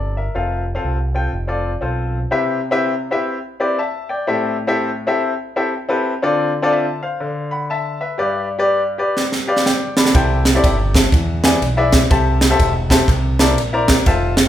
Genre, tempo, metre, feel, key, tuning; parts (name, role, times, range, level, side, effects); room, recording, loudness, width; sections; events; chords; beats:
uptempo gospel; 122 BPM; 4/4; swing 63% on 8ths; C major; A4 = 441 Hz
clear grand piano; accompaniment; 0.0-14.3 s; G2 to B5; -18 LUFS; left 2 dB
fingered electric bass with an envelope filter; bass; 0.0-2.2, 10.1-14.5 s; E1 to E2; -20 LUFS; equal
crisp fusion drum kit; drums; 9.2-14.5 s; kick drum, ride cymbal, snare drum; -15 LUFS; right 1 dB
light reverb; band playing live in one room, faint mains hum; -15 LUFS; side -11 dB against mid
0.0-2.3 A section; 2.3-14.5 B section
drum fill 9.2-10.1; grand piano fill 9.2-10.1
0.4 F; 2.3 Cmaj7; 4.3 Am7; 6.2 Dm7; 7.2 N.C.; 8.2 G; 10.1 C6; 11.1 E7; 12.1 Am7/C; 13.1 C13
| 0.35 0.84 1.33 1.82 | 2.31 2.81 3.29 3.78 | 4.27 4.76 5.25 5.74 | 6.23 6.72 7.21 7.70 | 8.19 8.68 9.17 9.66 | 10.15 10.63 11.12 11.62 | 12.11 12.60 13.08 13.57 | 14.06